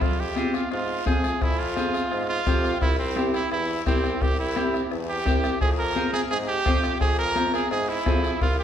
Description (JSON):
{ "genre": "latin, cumbia", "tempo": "172 BPM", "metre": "4/4", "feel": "straight", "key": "F harmonic minor", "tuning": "A4 = 441 Hz", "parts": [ { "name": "brilliant trumpet", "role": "melody", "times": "0.0-8.6 s", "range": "C4 to Bb4", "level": "-26 LUFS", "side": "right 3 dB", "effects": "none" }, { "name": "clear bassoon", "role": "bass", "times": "0.0-8.6 s", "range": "C2 to Ab2", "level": "-31 LUFS", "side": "equal", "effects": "none" }, { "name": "bombo", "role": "percussion", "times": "0.0-8.6 s", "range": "none", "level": "-27 LUFS", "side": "left 1 dB", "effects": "none" }, { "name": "guiro", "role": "percussion", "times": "0.0-8.6 s", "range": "none", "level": "-40 LUFS", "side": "left 6 dB", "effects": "none" }, { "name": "clean electric guitar", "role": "accompaniment", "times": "0.4-8.3 s", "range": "C4 to Bb4", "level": "-29 LUFS", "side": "left 1 dB", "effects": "none" }, { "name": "congas", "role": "percussion", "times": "0.4-8.2 s", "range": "none", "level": "-33 LUFS", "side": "left 6 dB", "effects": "none" } ], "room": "wet recital hall reverb, RT60 1.6 s", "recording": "recorded in a church or concert hall", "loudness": "-22 LUFS", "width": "side -9 dB against mid", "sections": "0.0-8.6 A section", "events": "none", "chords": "0.0 Fm; 2.8 C; 5.6 Fm" }